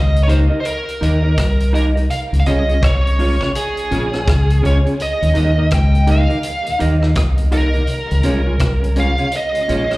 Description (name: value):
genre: roots reggae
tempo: 83 BPM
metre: 4/4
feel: swing 60% on 16ths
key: Eb mixolydian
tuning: A4 = 440 Hz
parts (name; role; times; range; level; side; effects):
- smooth overdriven lead guitar; melody; 0.0-10.0 s; Ab4 to G5; -21 LUFS; right 1 dB; tape echo, slapback echo
- deep dub fingered electric bass; bass; 0.0-10.0 s; Bb1 to Eb2; -15 LUFS; equal; none
- vintage drum kit; drums; 0.2-10.0 s; hi-hat, kick drum, rim click; -22 LUFS; equal; none
- mellow electric guitar; accompaniment; 0.3-10.0 s; Db4 to Eb5; -22 LUFS; right 1 dB; analog chorus, tape echo, slapback echo
- mellow tonewheel organ; accompaniment; 5.2-9.8 s; Eb2 to F4; -29 LUFS; left 3 dB; none
room: light reverb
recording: live gig heard through the venue's PA, club reverb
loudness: -14 LUFS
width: side -20 dB against mid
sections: 0.0-10.0 A section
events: none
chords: 0.0 Eb; 2.1 Db; 5.0 Eb; 7.9 Db